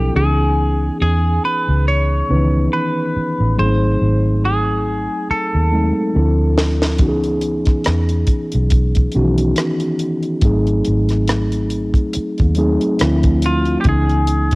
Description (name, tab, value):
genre	R&B, neo-soul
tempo	70 BPM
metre	4/4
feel	swing 56% on 16ths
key	C# minor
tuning	A4 = 445 Hz
part	semi-hollow electric guitar	melody	0.0-6.5, 13.5-14.6 s	F4 to C#5	-21 LUFS	equal	phaser
part	mellow tine electric piano	accompaniment	0.0-14.6 s	D#3 to B4	-19 LUFS	equal	medium stereo tremolo, cassette tape
part	vintage muted fingered electric bass	bass	0.0-14.6 s	G#1 to E2	-17 LUFS	equal	none
part	tight funk drum kit	drums	6.6-14.6 s	hi-hat, kick drum, rim click, snare drum	-17 LUFS	equal	cassette tape
room	small room ambience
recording	home recording on cassette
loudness	-14 LUFS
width	side -23 dB against mid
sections	0.0-14.6 A section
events	drum fill 5.3-7.0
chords	0.1 C#m7; 3.6 G#7b9; 6.1 Dm7; 7.0 C#m7; 10.4 G#7b9; 13.0 Dm7; 13.9 C#m7